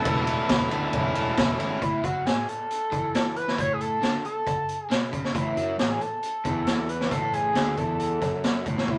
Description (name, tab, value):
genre	indie rock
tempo	136 BPM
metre	4/4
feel	straight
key	A major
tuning	A4 = 440 Hz
part	sync lead	melody	0.0-9.0 s	E4 to C#5	-30 LUFS	equal	chorus
part	glockenspiel with soft plastic mallets	second line	0.0-1.3 s	none	barely audible	none	none
part	tonewheel organ	sustained chords	0.0-1.8 s	A4 to B5	-41 LUFS	equal	none
part	overdriven electric guitar	riff	0.0-9.0 s	E2 to E4	-35 LUFS	equal	none
part	overdriven electric guitar	riff	0.0-1.8 s	E3 to A4	-34 LUFS	equal	none
part	fuzz picked electric bass	bass	0.1-1.8, 5.3-8.9 s	E1 to F#2	-34 LUFS	equal	overdrive
part	raw garage drum kit	drums	0.1-9.0 s	hi-hat, kick drum, ride cymbal, snare drum	-29 LUFS	equal	none
room	moderate studio reverb, RT60 0.8 s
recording	none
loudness	-26 LUFS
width	mono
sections	0.0-1.8 A section; 1.8-8.9 B section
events	none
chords	0.0 Aadd9/E; 1.8 A5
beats	| 0.05 0.49 0.93 1.37 | 1.81 2.25 2.69 3.13 | 3.58 4.02 4.46 4.90 | 5.35 5.79 6.23 6.67 | 7.11 7.56 8.00 8.44 | 8.88